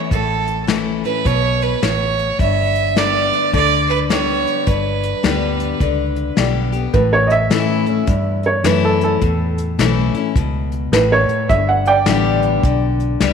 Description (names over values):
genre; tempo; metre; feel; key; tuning
honky-tonk and classic country; 105 BPM; 4/4; swing 63% on 8ths; A mixolydian; A4 = 439 Hz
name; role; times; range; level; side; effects
picked steel-string acoustic guitar; accompaniment; 0.0-13.3 s; E2 to G4; -20 LUFS; left 9 dB; none
clear fiddle; second line; 0.1-6.4 s; A4 to E5; -19 LUFS; right 8 dB; none
vintage muted fingered electric bass; bass; 0.1-13.3 s; G1 to A2; -20 LUFS; right 1 dB; none
soft brush drum kit; drums; 0.1-13.3 s; hi-hat, kick drum, snare drum; -21 LUFS; left 2 dB; none
clear upright piano; melody; 6.9-13.3 s; A4 to G5; -17 LUFS; right 4 dB; none
room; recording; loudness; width
moderate echo chamber reverb, RT60 2.0 s; 1960s-style stereo with parts hard left and right; -14 LUFS; side -6 dB against mid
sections
0.0-6.9 A section; 6.9-13.3 B section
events
fiddle solo 0.0-6.9; upright piano solo 6.9-13.3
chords
0.0 A; 2.4 G; 6.9 A; 11.5 G